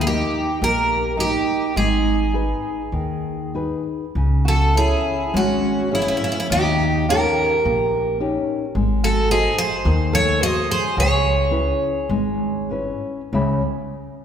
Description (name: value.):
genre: fado-style ballad.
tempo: 94-111 BPM.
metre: 4/4.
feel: rubato.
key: G# minor, C# minor from 4.2 s.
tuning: A4 = 440 Hz.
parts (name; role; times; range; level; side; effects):
picked twelve-string acoustic guitar; melody; 0.0-12.7 s; E4 to D#5; -21 LUFS; right 1 dB; none.
fingerpicked twelve-string acoustic guitar; second line; 0.0-12.7 s; C#4 to B#4; -26 LUFS; right 4 dB; none.
nylon-string guitar; accompaniment; 0.0-13.6 s; C#3 to B5; -24 LUFS; left 3 dB; none.
upright bass; bass; 0.0-13.6 s; G#1 to D#2; -23 LUFS; equal; none.
room: wet concert hall reverb, RT60 2.1 s.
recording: recorded in a church or concert hall.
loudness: -18 LUFS.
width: side -8 dB against mid.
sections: 0.0-4.2 A section; 4.2-13.3 B section.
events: none.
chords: 0.0 D#; 1.8 G#m; 4.2 C#m; 6.5 D#7; 8.8 G#7; 11.0 C#m7.